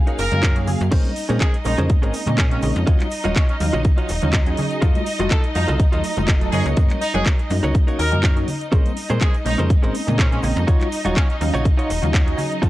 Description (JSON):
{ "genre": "filtered disco house", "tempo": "123 BPM", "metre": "4/4", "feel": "swing 54% on 16ths", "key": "Bb minor", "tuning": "A4 = 440 Hz", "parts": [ { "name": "funky polysynth comp", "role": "accompaniment", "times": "0.0-12.7 s", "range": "Gb3 to F5", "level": "-27 LUFS", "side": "right 2 dB", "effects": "chorus, phaser, sidechain pumping" }, { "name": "warm studio violin section", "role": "sustained chords", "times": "0.0-12.7 s", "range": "Eb4 to F5", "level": "-28 LUFS", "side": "equal", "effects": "vintage 12-bit sampler grit, sidechain pumping" }, { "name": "direct-recorded clean electric guitar", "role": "riff", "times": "0.1-12.7 s", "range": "Db4 to Eb5", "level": "-28 LUFS", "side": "right 2 dB", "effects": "vintage 12-bit sampler grit, sidechain pumping" }, { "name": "house drum kit", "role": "drums", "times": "0.1-12.7 s", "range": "crash cymbal, handclaps, hi-hat", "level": "-28 LUFS", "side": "equal", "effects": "sidechain pumping on hats, sidechain pumping on cymbals" }, { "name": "tube shaker and congas", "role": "percussion", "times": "0.1-12.7 s", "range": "none", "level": "-29 LUFS", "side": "left 1 dB", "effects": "sidechain pumping on perc" }, { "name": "bright horn section", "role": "melody", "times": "0.2-11.4 s", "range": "Db4 to Bb4", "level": "-27 LUFS", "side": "equal", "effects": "sidechain pumping, tape echo" }, { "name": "slap-like FM bass", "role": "bass", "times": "0.2-12.7 s", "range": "Eb1 to Bb2", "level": "-22 LUFS", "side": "equal", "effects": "tube saturation, sidechain pumping" }, { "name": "electronic kick drum", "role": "drums", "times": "0.4-12.7 s", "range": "none", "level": "-17 LUFS", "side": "equal", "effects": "none" } ], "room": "digital ambience", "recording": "dry, gritty hardware recording, cassette tape", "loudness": "-16 LUFS", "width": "side -16 dB against mid", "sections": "0.0-12.7 A section", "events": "none", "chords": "0.0 Gb6; 0.9 Bbm9; 2.9 Ebm9; 4.8 F7b9; 6.5 Gb6; 8.7 Bbm9; 10.7 Ebm9" }